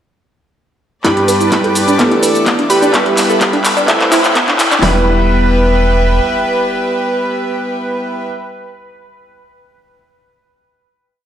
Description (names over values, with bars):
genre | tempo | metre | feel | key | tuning
progressive house | 127 BPM | 4/4 | straight | E minor | A4 = 441 Hz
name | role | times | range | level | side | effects
soft supersaw | melody | 1.0-8.3 s | G4 to B4 | -18 LUFS | right 1 dB | sidechain pumping, tape echo
glassy wavetable pluck | second line | 1.0-8.3 s | B5 | -24 LUFS | right 2 dB | chorus, cassette tape, sidechain pumping, tape echo
bright chamber string section | sustained chords | 1.0-8.3 s | B3 to D6 | -21 LUFS | left 1 dB | sidechain pumping
analog pluck | arpeggios | 1.0-5.0 s | B3 to E5 | -17 LUFS | equal | chorus, phaser, sidechain pumping, tape echo
clear grand piano | stabs | 1.0-8.3 s | G2 to B4 | -17 LUFS | right 1 dB | sidechain pumping, tape echo
deep house drum kit | drums | 1.0-4.9 s | hi-hat, kick drum, snare drum | -19 LUFS | equal | high-pass filter on kick, high-pass filter on snare, high-pass filter on hats
pop drum kit | drums | 1.0-4.8 s | handclaps, hi-hat, shaker | -15 LUFS | equal | high-pass filter on snare, high-pass filter on hats, high-pass filter on perc
saturated sub bass | bass | 1.3-6.2 s | E1 to D2 | -15 LUFS | equal | sidechain pumping, high-pass filter
room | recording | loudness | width
wet digital room reverb, RT60 1.1 s, digital ambience | played on a big sound system in a bare room, stone room reverb, high-pass filter | -10 LUFS | side -10 dB against mid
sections
1.0-4.8 build; 4.8-8.6 final chord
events
build-up 1.0-4.8; drum fill 1.0-4.8; filter sweep on synth arpeggio sound 1.0-4.8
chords
1.0 G; 2.0 Dsus2; 2.9 Em; 3.9 Amadd9; 4.8 Em